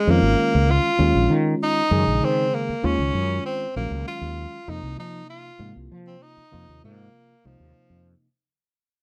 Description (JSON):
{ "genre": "jazz", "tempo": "65 BPM (dotted quarters)", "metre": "6/8", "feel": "straight", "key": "unclear", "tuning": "A4 = 440 Hz", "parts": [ { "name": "clear tenor saxophone", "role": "melody", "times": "0.0-8.1 s", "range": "F3 to F4", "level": "-26 LUFS", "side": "equal", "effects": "none" }, { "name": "barky reed electric piano", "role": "accompaniment", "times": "0.1-8.3 s", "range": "C3 to Ab4", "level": "-28 LUFS", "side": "equal", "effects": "overdrive" }, { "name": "fretless electric bass", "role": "bass", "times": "0.1-8.1 s", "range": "Ab1 to F3", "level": "-25 LUFS", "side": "equal", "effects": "none" } ], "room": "light reverb", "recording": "none", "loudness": "-21 LUFS", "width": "mono", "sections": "0.0-8.4 A section", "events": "fade-out 0.0-8.4", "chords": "0.0 Bbm7; 1.0 Ebm9; 4.7 F7(no3)", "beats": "0.07 | 1.00 1.92 | 2.84 3.76 | 4.68 5.60 | 6.53 7.45" }